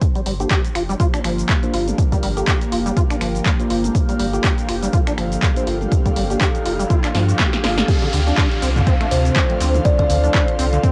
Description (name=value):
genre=acid house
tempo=122 BPM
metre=4/4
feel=swing 57% on 16ths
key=unclear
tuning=A4 = 440 Hz
part: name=warbly tape-like pad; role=sustained chords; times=0.7-10.9 s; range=D3 to A4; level=-34 LUFS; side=equal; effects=none
part: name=electronic kick drum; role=drums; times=0.0-10.9 s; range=none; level=-20 LUFS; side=equal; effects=cassette tape
part: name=punchy analog drum machine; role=drums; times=0.0-10.9 s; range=cabasa, finger snaps, handclaps, hi-hat, snare drum, toms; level=-26 LUFS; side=equal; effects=cassette tape
part: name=airy breathy pad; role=texture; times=0.0-10.9 s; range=Bb3 to F5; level=-28 LUFS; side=equal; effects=chorus, phaser, sidechain pumping, cassette tape
part: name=acid bass, saw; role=riff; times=0.2-10.9 s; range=C3 to G4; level=-27 LUFS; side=equal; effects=overdrive, lush chorus, cassette tape, analog delay
part: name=warm sub bass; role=bass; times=0.3-10.8 s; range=F1 to G2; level=-24 LUFS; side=equal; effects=sidechain pumping
part: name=deep mellow chord stab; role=stabs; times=0.4-10.4 s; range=F3 to C5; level=-32 LUFS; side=equal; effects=chorus, phaser, cassette tape, analog delay
part: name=riser and downlifter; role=sound effects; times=5.7-10.9 s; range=none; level=-33 LUFS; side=equal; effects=none
part: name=kalimba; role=melody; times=7.9-10.1 s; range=G4 to D5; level=-26 LUFS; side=equal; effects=cassette tape, analog delay
room=light reverb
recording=home recording on cassette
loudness=-18 LUFS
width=mono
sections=0.0-7.9 A section; 7.9-10.9 B section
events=riser 5.7-7.9; drum fill 7.1-7.9; drop 7.9-10.9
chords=0.0 Gm7; 7.9 Dm7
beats=| 0.01 0.51 1.00 1.49 | 1.98 2.47 2.97 3.46 | 3.95 4.44 4.93 5.42 | 5.92 6.41 6.90 7.39 | 7.88 8.38 8.87 9.36 | 9.85 10.34 10.84